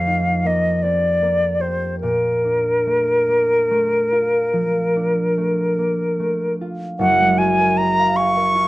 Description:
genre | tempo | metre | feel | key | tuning
classical, impressionist duo for flute and harp | 47-54 BPM (dotted quarters) | 12/8 | rubato | Bb major | A4 = 440 Hz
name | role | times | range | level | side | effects
bright concert flute | melody | 0.0-8.7 s | Bb4 to C#6 | -17 LUFS | equal | none
concert harp | accompaniment | 0.0-8.7 s | F#1 to E#5 | -22 LUFS | right 1 dB | none
room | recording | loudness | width
moderate studio reverb, RT60 0.8 s | worn, warbling old tape, cassette tape, warbly pitch drift | -16 LUFS | side -18 dB against mid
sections
0.0-7.0 A section; 7.0-8.7 B section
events
none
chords
0.0 F9sus4; 2.0 Bbmaj7; 7.0 F#maj9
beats
0.83 | 2.03 3.27 4.51 5.76 | 7.00 8.15

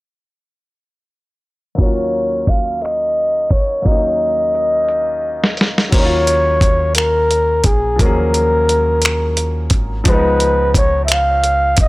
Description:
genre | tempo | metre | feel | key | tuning
slow six-eight R&B | 58 BPM (dotted quarters) | 6/8 | straight | Eb minor | A4 = 440 Hz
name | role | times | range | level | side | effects
breathy flugelhorn | melody | 1.8-11.9 s | Ab4 to F5 | -16 LUFS | equal | none
clear concert grand piano | accompaniment | 1.8-11.9 s | Eb2 to Ab4 | -23 LUFS | left 2 dB | none
dusty soul sampler-style drum kit | drums | 1.8-11.9 s | crash cymbal, finger snaps, hi-hat, kick drum, snare drum | -15 LUFS | equal | none
deep dub fingered electric bass | bass | 5.9-11.9 s | Gb1 to Eb2 | -19 LUFS | equal | none
room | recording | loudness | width
little or no reverb | dry, gritty hardware recording, transformer saturation, low-pass filter | -13 LUFS | side -20 dB against mid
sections
1.8-5.9 A section; 5.9-11.9 B section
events
filter sweep 1.8-5.9; drum fill 3.9-5.9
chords
1.8 Ebm9; 10.1 Db9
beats
| 1.78 2.82 | 3.85 4.89 | 5.92 6.96 | 7.99 9.03 | 10.06 11.10

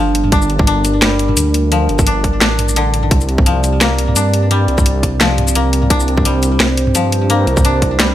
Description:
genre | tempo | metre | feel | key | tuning
half-time drum and bass | 172 BPM | 4/4 | swing 56% on 16ths, half-time | unclear | A4 = 442 Hz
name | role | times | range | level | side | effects
dark analog pad | sustained chords | 0.0-8.1 s | G3 to D5 | -20 LUFS | right 2 dB | lush chorus, sidechain pumping
koto | arpeggios | 0.0-8.1 s | D3 to D4 | -19 LUFS | left 3 dB | digital delay
dark detuned saw bass | bass | 0.0-8.1 s | G1 to G2 | -16 LUFS | equal | none
drum and bass drum kit | drums | 0.1-8.1 s | hi-hat, shaker, snare drum, toms | -16 LUFS | equal | overdrive, studio reverb
electronic kick drum | drums | 0.3-7.9 s | none | -14 LUFS | equal | overdrive, studio reverb
room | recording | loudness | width
light reverb | none | -11 LUFS | side -12 dB against mid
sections
0.0-8.1 A section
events
none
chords
0.0 Gm; 3.1 C5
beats
| 0.32 0.67 1.02 1.37 | 1.72 2.07 2.42 2.76 | 3.11 3.46 3.81 4.16 | 4.51 4.86 5.21 5.55 | 5.90 6.25 6.60 6.95 | 7.30 7.65 8.00

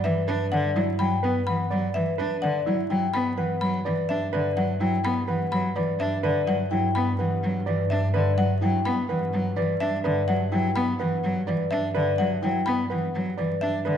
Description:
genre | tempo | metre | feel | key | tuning
classical, minimalist pattern music | 126 BPM | 4/4 | straight | G major | A4 = 440 Hz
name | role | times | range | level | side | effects
vibraphone with soft mallets | melody | 0.0-14.0 s | B4 to G5 | -29 LUFS | left 8 dB | none
rich cello | accompaniment | 0.0-14.0 s | D3 to D4 | -26 LUFS | equal | none
dark baby grand piano | arpeggios | 0.0-14.0 s | E4 to D5 | -30 LUFS | right 5 dB | none
xylophone with rubber mallets | arpeggios | 0.0-13.9 s | E5 to B5 | -32 LUFS | equal | none
clear symphonic double bass section | bass | 0.0-14.0 s | G2 | -30 LUFS | equal | none
room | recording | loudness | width
wet scoring stage reverb, RT60 1.8 s | dark, warm production, vinyl crackle | -22 LUFS | side -8 dB against mid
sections
0.0-2.9 A section; 2.9-14.0 B section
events
none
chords
0.0 Gmaj7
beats
0.04 0.52 | 0.99 1.47 1.95 2.42 | 2.90 3.37 3.85 4.33 | 4.80 5.28 5.75 6.23 | 6.71 7.18 7.66 8.14 | 8.61 9.09 9.56 10.04 | 10.52 10.99 11.47 11.95 | 12.42 12.90 13.37 13.85

